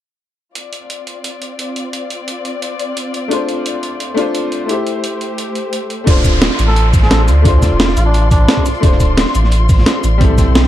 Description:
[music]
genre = liquid drum and bass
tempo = 174 BPM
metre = 4/4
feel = straight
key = D minor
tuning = A4 = 440 Hz
[part]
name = muted studio string section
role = sustained chords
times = 0.6-10.7 s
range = A3 to C6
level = -24 LUFS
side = left 2 dB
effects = none
[part]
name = breakbeat sampler-style drum kit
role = drums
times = 0.6-10.7 s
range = cabasa, crash cymbal, hi-hat, snare drum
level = -18 LUFS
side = right 1 dB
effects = none
[part]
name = bright grand piano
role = accompaniment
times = 3.3-10.7 s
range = G3 to C5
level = -19 LUFS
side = left 3 dB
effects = digital delay
[part]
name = warm sub bass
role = bass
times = 6.1-10.7 s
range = D1 to D2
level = -13 LUFS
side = equal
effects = none
[part]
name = crunchy breakbeat drum kit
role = drums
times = 6.1-10.7 s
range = hi-hat, snare drum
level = -23 LUFS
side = equal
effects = none
[part]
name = electronic kick drum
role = drums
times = 6.1-10.5 s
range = none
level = -12 LUFS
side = equal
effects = none
[part]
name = downlifter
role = sound effects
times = 6.1-8.8 s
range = none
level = -24 LUFS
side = equal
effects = none
[part]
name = trumpet with cup mute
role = melody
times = 6.7-8.7 s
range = D4 to A4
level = -21 LUFS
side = equal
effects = digital delay
[sound]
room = light reverb, small room reverb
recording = dark, warm production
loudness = -12 LUFS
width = side -13 dB against mid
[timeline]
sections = 0.6-6.1 A section; 6.1-10.7 B section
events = drop 6.1-10.7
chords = 0.6 Dm7; 4.7 Am7; 6.1 Dm7

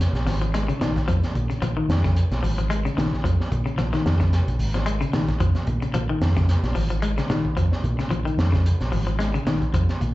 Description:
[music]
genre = afrobeat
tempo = 111 BPM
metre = 4/4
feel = swing 55% on 16ths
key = Bb minor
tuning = A4 = 441 Hz
[part]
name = electric guitar at the edge of break-up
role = arpeggios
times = 0.0-9.9 s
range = Db3 to Ab3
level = -27 LUFS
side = left 3 dB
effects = tremolo, slapback echo
[part]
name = fingered electric bass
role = bass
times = 0.0-10.1 s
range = Ab1 to Bb2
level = -22 LUFS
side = equal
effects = none
[part]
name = crunchy breakbeat drum kit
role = drums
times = 0.0-10.1 s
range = hi-hat, kick drum, snare drum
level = -26 LUFS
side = equal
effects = none
[sound]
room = light reverb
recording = live gig heard through the venue's PA, club reverb, nothing above 7.8 kHz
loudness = -20 LUFS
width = side -17 dB against mid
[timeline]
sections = 0.0-10.1 A section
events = none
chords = 0.0 Bbm7

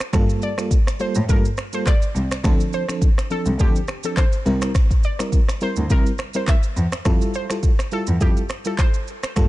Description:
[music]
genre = afrobeats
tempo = 104 BPM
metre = 4/4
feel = swing 55% on 16ths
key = F major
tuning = A4 = 442 Hz
[part]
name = afro-pop drum kit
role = drums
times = 0.0-9.5 s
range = finger snaps, handclaps, kick drum, rim click, shaker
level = -19 LUFS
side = equal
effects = none
[part]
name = FM electric piano with tremolo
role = accompaniment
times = 0.1-9.5 s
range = F3 to Bb4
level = -26 LUFS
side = equal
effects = none
[part]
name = warm cello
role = bass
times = 0.1-9.4 s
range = C2 to A2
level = -22 LUFS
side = equal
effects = none
[part]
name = glassy wavetable pluck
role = melody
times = 0.4-9.2 s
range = G4 to E5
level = -30 LUFS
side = right 1 dB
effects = chorus, digital delay
[sound]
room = little or no reverb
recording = nothing above 10.5 kHz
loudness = -18 LUFS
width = side -17 dB against mid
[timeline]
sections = 0.0-9.5 A section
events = none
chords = 0.1 Gm9; 2.4 Dm7; 4.5 C7; 7.1 Fmaj9

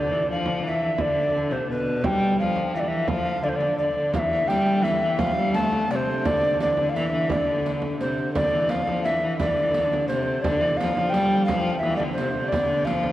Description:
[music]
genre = medieval dance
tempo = 172 BPM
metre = 3/4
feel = straight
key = D dorian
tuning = A4 = 439 Hz
[part]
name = breathy mellow tenor recorder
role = melody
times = 0.0-13.1 s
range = B4 to A5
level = -24 LUFS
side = equal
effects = none
[part]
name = rich viola da gamba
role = second line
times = 0.0-13.1 s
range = B2 to A3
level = -26 LUFS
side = left 1 dB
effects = none
[part]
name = rich hurdy-gurdy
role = drone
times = 0.0-13.1 s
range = D3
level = -35 LUFS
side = equal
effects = none
[part]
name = frame drum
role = percussion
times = 0.5-13.1 s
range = none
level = -32 LUFS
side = right 2 dB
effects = none
[part]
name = riq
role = percussion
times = 4.1-13.0 s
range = none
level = -33 LUFS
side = right 2 dB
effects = none
[sound]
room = wet church reverb, RT60 3.1 s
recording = worn, warbling old tape, cassette tape, warbly pitch drift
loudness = -21 LUFS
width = side -14 dB against mid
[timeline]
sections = 0.0-8.3 A section; 8.3-13.1 A section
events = none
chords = none

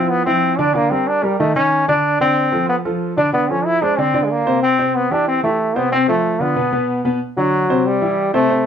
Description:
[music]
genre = jazz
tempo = 186 BPM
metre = 4/4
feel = straight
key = unclear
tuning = A4 = 440 Hz
[part]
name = bright trombone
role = melody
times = 0.0-8.7 s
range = F#3 to E4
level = -16 LUFS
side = equal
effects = none
[part]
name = warm baby grand piano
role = accompaniment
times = 0.0-8.7 s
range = B2 to Eb5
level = -19 LUFS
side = equal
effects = none
[sound]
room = light reverb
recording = dark, warm production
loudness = -15 LUFS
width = side -8 dB against mid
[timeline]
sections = 0.0-7.2 A section; 7.2-8.7 B section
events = trombone solo 7.2-8.7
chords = 0.0 F5; 0.8 Gmadd11/D; 1.4 Dbsus2; 2.0 Dm7; 3.3 Dm13; 4.0 Bbadd9; 4.6 Am7; 5.9 Dm7; 6.6 N.C.; 7.2 D7; 7.9 C6

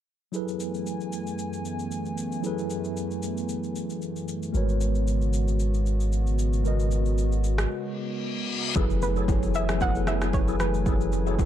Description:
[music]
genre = amapiano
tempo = 114 BPM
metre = 4/4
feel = swing 55% on 16ths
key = F# dorian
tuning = A4 = 435 Hz
[part]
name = mellow tine electric piano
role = accompaniment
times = 0.3-11.5 s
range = F#3 to D#5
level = -30 LUFS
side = equal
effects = medium stereo tremolo
[part]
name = hollow soft pad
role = sustained chords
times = 0.5-11.5 s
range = F#2 to G#5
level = -33 LUFS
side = right 1 dB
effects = chorus
[part]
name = afro-pop drum kit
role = drums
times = 0.3-11.5 s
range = kick drum, rim click, shaker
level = -30 LUFS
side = equal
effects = vintage 12-bit sampler grit
[part]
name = punchy sub bass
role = bass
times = 4.5-11.5 s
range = F#1 to G#1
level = -25 LUFS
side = equal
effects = none
[part]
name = reverse cymbal and impact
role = sound effects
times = 8.0-10.9 s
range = none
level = -33 LUFS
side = left 4 dB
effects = none
[part]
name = tonewheel organ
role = stabs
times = 8.8-11.4 s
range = B3 to A4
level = -39 LUFS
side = left 1 dB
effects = overdrive, chorus vibrato, slow rotary speaker, tape echo
[part]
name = congas and bongos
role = percussion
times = 8.8-11.5 s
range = none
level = -36 LUFS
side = left 6 dB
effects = none
[part]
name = soft round pluck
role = melody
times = 9.0-11.1 s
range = B4 to F#5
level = -32 LUFS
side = equal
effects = chorus, tape echo
[sound]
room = digital ambience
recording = dark, warm production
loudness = -24 LUFS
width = side -11 dB against mid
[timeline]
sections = 0.3-8.8 A section; 8.8-11.5 B section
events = break 7.7-8.8; reverse cymbal 8.0-8.8; impact 8.8-10.9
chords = 0.3 F#m11; 4.5 G#m11; 8.8 F#m11

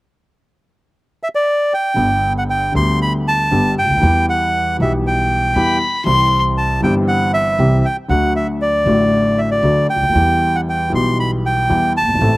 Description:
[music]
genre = tango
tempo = 117 BPM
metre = 4/4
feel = rubato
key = G major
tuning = A4 = 439 Hz
[part]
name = bandoneon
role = melody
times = 1.2-12.4 s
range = D5 to C6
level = -16 LUFS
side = right 1 dB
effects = slapback echo
[part]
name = warm baby grand piano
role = accompaniment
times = 1.9-12.4 s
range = F#1 to A4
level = -18 LUFS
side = left 1 dB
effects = none
[part]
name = upright bass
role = bass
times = 2.0-12.4 s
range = F#1 to E2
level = -20 LUFS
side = right 1 dB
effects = none
[part]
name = warm violin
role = second line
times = 5.6-6.4 s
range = B5 to C6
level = -16 LUFS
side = left 2 dB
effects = slapback echo
[sound]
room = little or no reverb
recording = recorded outdoors, with no room sound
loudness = -13 LUFS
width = side -19 dB against mid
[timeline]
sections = 0.0-2.0 A section; 2.0-12.4 B section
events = none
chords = 0.0 N.C.; 2.0 G; 4.0 Em; 6.1 C; 8.1 D; 10.2 Em

